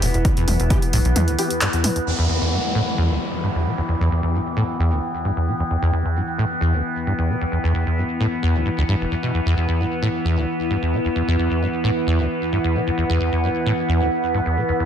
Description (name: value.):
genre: driving peak-time techno.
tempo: 132 BPM.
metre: 4/4.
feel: straight.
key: E minor.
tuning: A4 = 440 Hz.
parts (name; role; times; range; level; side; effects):
acid bass, saw; riff; 0.0-14.9 s; E1 to B2; -21 LUFS; equal; wide subtle chorus, sidechain pumping, digital delay.
tight sequencer bass; bass; 0.0-1.1 s; E1 to B1; -20 LUFS; equal; sidechain pumping.
overtone-sweeping drone; drone; 0.0-14.9 s; E3 to B3; -26 LUFS; left 3 dB; chorus, built-in reverb, sidechain pumping.
punchy analog drum machine; drums; 0.0-2.0 s; handclaps, hi-hat, toms; -24 LUFS; equal; overdrive, low-pass filter on hats, low-pass filter on snare, low-pass filter on toms.
warbly tape-like pad; texture; 0.0-14.9 s; E4 to G5; -26 LUFS; right 2 dB; chorus, built-in reverb, sidechain pumping.
electronic kick drum; drums; 0.2-0.8 s; none; -20 LUFS; equal; none.
rave stab; stabs; 0.7-1.5 s; E3 to G4; -30 LUFS; left 2 dB; chorus, built-in reverb, sidechain pumping, digital delay.
downlifter; sound effects; 2.1-5.7 s; none; -27 LUFS; equal; none.
room: light reverb.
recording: none.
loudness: -18 LUFS.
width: side -8 dB against mid.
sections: 0.0-2.1 A section; 2.1-14.9 B section.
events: band accent 1.6.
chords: 0.0 Em.